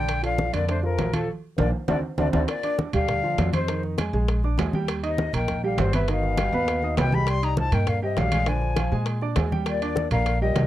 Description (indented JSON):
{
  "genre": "Afro-Cuban jazz",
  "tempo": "201 BPM",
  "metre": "4/4",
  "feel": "straight",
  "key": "Bb major",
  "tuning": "A4 = 440 Hz",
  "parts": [
    { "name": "concert flute", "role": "melody", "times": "0.0-10.7 s", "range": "A4 to C6", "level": "-28 LUFS", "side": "left 4 dB", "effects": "none" },
    { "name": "trombone with cup mute", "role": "second line", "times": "0.0-10.7 s", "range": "G2 to D4", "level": "-33 LUFS", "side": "left 8 dB", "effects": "none" },
    { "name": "warm concert grand piano", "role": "accompaniment", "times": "0.0-10.7 s", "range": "D3 to Eb6", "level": "-29 LUFS", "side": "right 4 dB", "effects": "none" },
    { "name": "upright bass", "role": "bass", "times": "0.0-10.7 s", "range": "G1 to Bb2", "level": "-26 LUFS", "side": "equal", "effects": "none" },
    { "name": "bongos", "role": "percussion", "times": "0.1-10.7 s", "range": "none", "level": "-32 LUFS", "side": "left 8 dB", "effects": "none" },
    { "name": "congas", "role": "percussion", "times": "0.1-10.7 s", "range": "none", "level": "-29 LUFS", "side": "equal", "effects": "none" },
    { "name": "timbales", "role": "percussion", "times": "0.1-10.7 s", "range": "none", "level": "-33 LUFS", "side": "right 8 dB", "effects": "none" }
  ],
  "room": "light reverb",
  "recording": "dry, close 1970s-style studio recording",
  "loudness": "-22 LUFS",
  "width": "side -13 dB against mid",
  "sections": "0.0-2.5 A section; 2.5-10.7 B section",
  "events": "band accent 1.3-2.5; drum fill 1.9-2.5",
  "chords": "0.1 Bbmaj7; 1.9 D7; 2.5 Gm7; 3.7 Fm7; 4.3 Bb6; 4.9 Eb6; 6.1 Gaug7; 7.3 Cm11; 8.5 Bb6; 9.7 Ebmaj9"
}